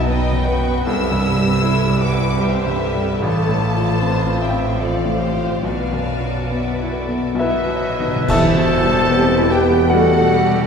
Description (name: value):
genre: classical, romantic movement for piano and orchestra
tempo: 62-81 BPM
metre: 3/4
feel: rubato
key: E minor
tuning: A4 = 440 Hz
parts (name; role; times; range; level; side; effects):
- clear baby grand piano; melody; 0.0-10.7 s; A1 to A5; -19 LUFS; left 1 dB; none
- warm studio violin section; melody; 0.0-10.7 s; E5 to E6; -27 LUFS; left 3 dB; none
- warm studio violin section; second line; 0.0-10.7 s; D#4 to A5; -26 LUFS; equal; none
- warm studio viola section; accompaniment; 0.0-10.7 s; G3 to E5; -25 LUFS; equal; none
- warm studio cello section; bass; 0.0-10.7 s; A2 to A4; -24 LUFS; right 2 dB; none
- warm studio double bass section; bass; 0.0-10.7 s; A1 to E2; -24 LUFS; right 1 dB; none
- cymbal swell, clash cymbals and concert bass drum; percussion; 5.7-9.9 s; none; -28 LUFS; equal; none
- hollow concert flute; second line; 7.4-10.7 s; A4 to C5; -24 LUFS; equal; none
- mellow cor anglais; second line; 7.4-10.7 s; E4 to A4; -25 LUFS; right 2 dB; none
- timpani; percussion; 7.4-8.2 s; B2; -28 LUFS; equal; none
- warm French horn section; sustained chords; 8.3-10.7 s; G3 to E4; -26 LUFS; left 2 dB; none
- warm tuba; bass; 8.3-10.7 s; E1; -25 LUFS; right 1 dB; none
room: wet scoring stage reverb, RT60 1.8 s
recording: heard from further back in the room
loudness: -15 LUFS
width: side -6 dB against mid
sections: 0.0-8.3 A section; 8.3-10.7 A section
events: timpani fill 7.4-8.3; band accent 8.3-9.1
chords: 0.0 B; 0.9 C; 3.2 F/A; 5.6 Bsus4; 7.4 B; 8.3 Em